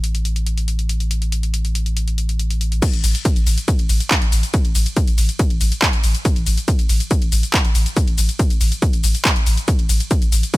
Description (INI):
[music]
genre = driving peak-time techno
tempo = 140 BPM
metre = 4/4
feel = straight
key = unclear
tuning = A4 = 440 Hz
[part]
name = saturated sub bass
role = bass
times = 0.0-10.4 s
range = A1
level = -20 LUFS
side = equal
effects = sidechain pumping, low-pass filter
[part]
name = techno drum kit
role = drums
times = 0.0-10.6 s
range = crash cymbal, handclaps, hi-hat, ride cymbal, shaker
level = -22 LUFS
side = left 1 dB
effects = overdrive, sidechain pumping on hats, sidechain pumping on cymbals, sidechain pumping on perc
[part]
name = electronic kick drum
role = drums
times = 2.8-10.6 s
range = none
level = -17 LUFS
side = equal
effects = overdrive
[sound]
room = little or no reverb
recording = none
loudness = -16 LUFS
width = side -19 dB against mid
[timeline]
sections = 0.0-2.8 A section; 2.8-10.6 B section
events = drop 2.8-10.6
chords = none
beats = 0.25 0.68 | 1.11 1.54 1.97 2.39 | 2.82 3.25 3.68 4.11 | 4.54 4.97 5.39 5.82 | 6.25 6.68 7.11 7.54 | 7.97 8.39 8.82 9.25 | 9.68 10.11 10.54